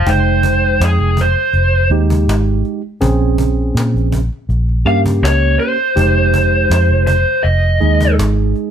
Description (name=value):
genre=straight-eighth soul blues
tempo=81 BPM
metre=4/4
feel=straight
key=F minor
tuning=A4 = 440 Hz
part: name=lead guitar through a small cranked amp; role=melody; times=0.0-8.1 s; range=Ab4 to F5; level=-15 LUFS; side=equal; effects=overdrive
part: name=vintage muted fingered electric bass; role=bass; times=0.0-8.5 s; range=F1 to Bb2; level=-14 LUFS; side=equal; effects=none
part: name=bright tine electric piano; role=accompaniment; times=0.1-8.7 s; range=Ab3 to G5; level=-18 LUFS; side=moving between right 3 dB and right 9 dB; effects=auto-pan
part: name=cajon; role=drums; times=0.1-8.6 s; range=none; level=-24 LUFS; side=equal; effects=none
room=light reverb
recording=none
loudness=-12 LUFS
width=side -8 dB against mid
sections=0.1-8.7 A section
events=none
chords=0.1 Fm7; 3.0 Bbm7; 6.0 Fm7